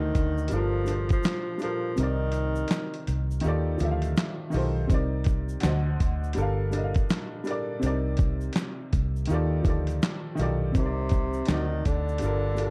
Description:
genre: lo-fi hip hop.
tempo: 82 BPM.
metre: 4/4.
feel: swing 62% on 16ths.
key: C dorian.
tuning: A4 = 442 Hz.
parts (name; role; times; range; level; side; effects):
breathy tenor saxophone; melody; 0.0-3.4, 10.8-12.7 s; C3 to F3; -33 LUFS; equal; none.
clear upright piano; accompaniment; 0.0-12.7 s; C3 to F5; -33 LUFS; equal; cassette tape.
vintage muted fingered electric bass; bass; 0.0-12.7 s; G1 to Eb2; -30 LUFS; equal; none.
dusty soul sampler-style drum kit; drums; 0.1-12.7 s; handclaps, hi-hat, kick drum, snare drum; -30 LUFS; equal; none.
tube shaker; percussion; 0.1-12.7 s; none; -57 LUFS; equal; none.
room: small room ambience.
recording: dark, warm production.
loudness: -27 LUFS.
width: mono.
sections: 0.0-12.7 A section.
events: kick muted 2.0-4.9.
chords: 0.0 D7b9; 0.5 Gm9; 2.0 Cm7; 3.4 Ebmaj9#11; 4.9 Cm7; 5.6 D7b9; 6.4 Gm9; 7.8 Cm7; 9.3 Ebmaj9#11; 10.8 Cm7; 11.5 D7b9.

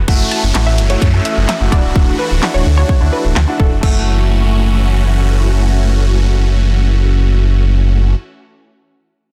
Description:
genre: dance-pop.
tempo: 128 BPM.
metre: 4/4.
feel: straight.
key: F# minor.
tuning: A4 = 441 Hz.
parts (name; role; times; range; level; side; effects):
supersaw chords; sustained chords; 0.0-8.1 s; E3 to F#4; -24 LUFS; equal; phaser, sidechain pumping.
sub bass with octave; bass; 0.0-8.1 s; C#1 to F#2; -15 LUFS; equal; sidechain pumping.
warm grand piano; accompaniment; 0.1-8.2 s; A3 to A4; -26 LUFS; equal; sidechain pumping.
house drum kit; drums; 0.1-3.9 s; crash cymbal, handclaps, hi-hat, kick drum, snare drum; -17 LUFS; equal; none.
downlifter; sound effects; 0.1-3.8 s; none; -26 LUFS; equal; none.
unison pluck; melody; 0.3-5.2 s; A4 to A5; -25 LUFS; equal; sidechain pumping, digital delay.
room: little or no reverb.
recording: dense, heavily limited modern master.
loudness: -13 LUFS.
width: mono.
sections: 0.1-3.8 A section; 3.8-7.6 B section.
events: none.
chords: 0.1 F#m7; 1.7 Dadd9; 3.8 F#m7.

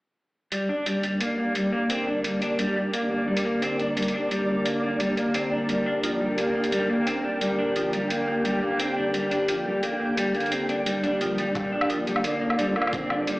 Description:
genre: half-time drum and bass.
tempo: 174 BPM.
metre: 4/4.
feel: half-time.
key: G minor.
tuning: A4 = 439 Hz.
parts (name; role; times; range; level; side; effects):
bowed-like drone; sustained chords; 0.5-13.4 s; D3 to C5; -28 LUFS; equal; built-in reverb, sidechain pumping.
electric guitar through a small old amp; arpeggios; 0.5-13.4 s; F3 to D4; -26 LUFS; equal; harmonic tremolo, low-pass filter, digital delay.
electronic hi-hat and woodblock; drums; 0.5-13.3 s; none; -30 LUFS; equal; none.
flickering grainy texture; texture; 0.9-13.4 s; D4 to G5; -32 LUFS; right 1 dB; built-in reverb.
swell; sound effects; 11.0-11.6 s; none; -34 LUFS; right 1 dB; none.
electronic kick drum; drums; 11.6-13.0 s; none; -36 LUFS; equal; none.
room: moderate huge ambient reverb, RT60 7.7 s.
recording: played on a big sound system in a bare room, large studio reverb, AM radio sound.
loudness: -23 LUFS.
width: side -21 dB against mid.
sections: 0.5-13.4 A section.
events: swell 11.0-11.6.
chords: 0.5 Gm.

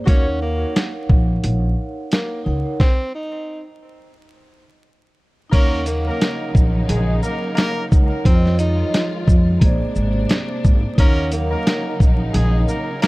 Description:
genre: hip hop, boom-bap hip-hop.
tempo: 88 BPM.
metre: 4/4.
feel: swing 57% on 16ths.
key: Eb dorian.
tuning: A4 = 440 Hz.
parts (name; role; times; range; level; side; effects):
vibraphone with soft mallets; accompaniment; 0.0-13.1 s; F3 to Gb5; -26 LUFS; right 1 dB; high-pass filter, low-pass filter.
breathy tenor saxophone; melody; 0.1-13.1 s; Bb3 to Eb4; -27 LUFS; equal; high-pass filter, low-pass filter, analog delay.
clear horn section; stabs; 0.1-0.3, 5.5-13.1 s; Ab3 to Db5; -28 LUFS; equal; high-pass filter, low-pass filter, analog delay.
upright bass; bass; 0.1-12.6 s; Ab1 to F2; -19 LUFS; equal; none.
dusty soul sampler-style drum kit; drums; 0.1-13.1 s; crash cymbal, hi-hat, kick drum, shaker, snare drum; -15 LUFS; equal; none.
warm studio string section; sustained chords; 5.5-13.1 s; C3 to F4; -29 LUFS; equal; high-pass filter, low-pass filter.
room: little or no reverb.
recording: dark, warm production, vinyl crackle.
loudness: -16 LUFS.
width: side -21 dB against mid.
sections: 0.0-5.5 A section; 5.5-13.1 B section.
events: stop 2.8-5.5.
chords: 0.1 Ebm7; 2.8 N.C.; 5.5 Ebm7; 8.3 Fm7; 9.6 Bb9; 11.0 Ebm7.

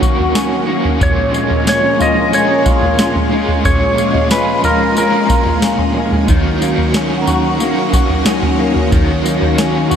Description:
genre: dream pop.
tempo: 91 BPM.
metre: 4/4.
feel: straight.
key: Eb minor.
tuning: A4 = 440 Hz.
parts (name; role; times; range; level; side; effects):
raw garage guitar; accompaniment; 0.0-10.0 s; Bb2 to Gb4; -18 LUFS; right 2 dB; overdrive, tremolo, wide subtle chorus.
string machine, violins; sustained chords; 0.0-10.0 s; Gb3 to Bb4; -20 LUFS; equal; ensemble chorus.
semi-hollow electric guitar; arpeggios; 0.0-10.0 s; Bb2 to Gb4; -19 LUFS; left 4 dB; ensemble chorus, ping-pong delay.
soft vintage rhythm box; drums; 0.0-10.0 s; kick drum, snare drum, tambourine, toms; -16 LUFS; equal; none.
clean lap steel guitar; melody; 1.0-5.9 s; Bb4 to Eb5; -16 LUFS; equal; ping-pong delay, slapback echo.
worn celesta; texture; 1.2-10.0 s; Db5 to Eb6; -28 LUFS; left 1 dB; ping-pong delay.
room: wet lush hall reverb, RT60 2.5 s.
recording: big arena sound.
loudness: -11 LUFS.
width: side -8 dB against mid.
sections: 0.0-10.0 A section.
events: none.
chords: 0.0 Ebm7; 1.0 Bbm7; 6.3 Ebm7.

